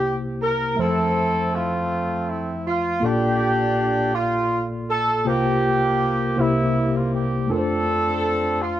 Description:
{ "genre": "gospel", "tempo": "54 BPM (dotted quarters)", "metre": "6/8", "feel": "straight", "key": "F major", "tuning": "A4 = 438 Hz", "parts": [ { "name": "warm horn section", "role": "melody", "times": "0.0-8.8 s", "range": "G3 to Bb4", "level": "-21 LUFS", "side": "right 1 dB", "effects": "slapback echo" }, { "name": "mellow tine electric piano", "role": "accompaniment", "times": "0.0-8.8 s", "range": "Bb1 to E5", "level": "-23 LUFS", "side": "left 1 dB", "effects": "medium stereo tremolo" } ], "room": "little or no reverb", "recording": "recorded outdoors, with no room sound", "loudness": "-19 LUFS", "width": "side -12 dB against mid", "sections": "0.0-8.8 A section", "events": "none", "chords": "0.0 C7; 0.8 Fmaj7; 3.0 Bbmaj7; 5.3 C7sus4; 6.4 C7; 7.5 F6" }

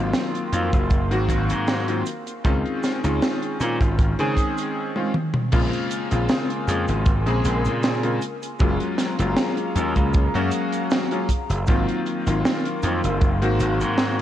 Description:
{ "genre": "vaporwave", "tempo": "78 BPM", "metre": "4/4", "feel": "swing 54% on 16ths", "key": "Bb minor", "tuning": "A4 = 442 Hz", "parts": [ { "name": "clear electric grand piano", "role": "accompaniment", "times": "0.0-14.2 s", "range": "Db3 to Ab4", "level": "-24 LUFS", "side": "left 2 dB", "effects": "lush chorus, analog delay" }, { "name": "warbly tape-like pad", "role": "sustained chords", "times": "0.0-14.2 s", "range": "Ab4 to Db6", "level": "-32 LUFS", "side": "equal", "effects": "chorus, built-in reverb, vintage 12-bit sampler grit" }, { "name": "gritty slap bass", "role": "bass", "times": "0.0-14.2 s", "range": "Gb1 to Db3", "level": "-23 LUFS", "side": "equal", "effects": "overdrive, tube saturation" }, { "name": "tight funk drum kit", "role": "drums", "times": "0.1-14.2 s", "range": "cabasa, crash cymbal, hi-hat, snare drum, toms", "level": "-26 LUFS", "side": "right 1 dB", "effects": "gated reverb" }, { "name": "kick drum", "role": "drums", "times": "0.7-13.4 s", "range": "none", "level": "-20 LUFS", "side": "equal", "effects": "none" } ], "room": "light reverb, small room ambience", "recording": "cassette tape", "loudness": "-20 LUFS", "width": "side -12 dB against mid", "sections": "0.0-5.5 A section; 5.5-14.2 B section", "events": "break 4.8-5.5; drum fill 4.9-5.5", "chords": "0.0 Ab13; 2.1 Dbmaj7; 5.5 Bbm9; 8.2 Gbmaj9; 11.7 Ab13" }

